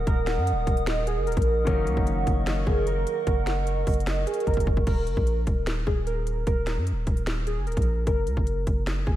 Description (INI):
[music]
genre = hip hop, trap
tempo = 150 BPM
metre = 4/4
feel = half-time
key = Eb minor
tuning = A4 = 438 Hz
[part]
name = warbly lo-fi synth keys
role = melody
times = 0.0-9.2 s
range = Ab4 to Bb4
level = -31 LUFS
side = equal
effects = chorus, diffuse ambient delay
[part]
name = hollow clarinet-like synth lead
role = second line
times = 0.0-4.8 s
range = Bb4 to Gb5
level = -32 LUFS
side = right 4 dB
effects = chorus, diffuse ambient delay
[part]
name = bright concert grand piano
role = accompaniment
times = 0.0-4.9 s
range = Eb3 to Gb4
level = -36 LUFS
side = left 4 dB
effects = none
[part]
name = warbly tape-like pad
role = sustained chords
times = 0.0-4.8 s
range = Bb4 to Eb6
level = -36 LUFS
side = equal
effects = chorus, built-in reverb
[part]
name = long sustained 808-style bass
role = bass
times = 0.0-9.2 s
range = Eb1 to Gb2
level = -27 LUFS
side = equal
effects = none
[part]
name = trap drum kit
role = drums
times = 0.1-9.2 s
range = crash cymbal, finger snaps, hi-hat, kick drum, snare drum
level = -26 LUFS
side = equal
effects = none
[sound]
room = moderate lush hall reverb, RT60 2.0 s, digital ambience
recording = dreamy mix soaked in reverb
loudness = -23 LUFS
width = side -13 dB against mid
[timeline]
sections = 0.0-4.9 A section; 4.9-9.2 B section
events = drum fill 4.5-4.9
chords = 0.0 Ebm; 1.7 Gb6; 4.9 Eb5; 8.1 Gb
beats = | 0.07 0.47 0.87 1.27 | 1.67 2.07 2.47 2.87 | 3.27 3.67 4.07 4.47 | 4.87 5.27 5.67 6.07 | 6.47 6.87 7.27 7.67 | 8.07 8.47 8.87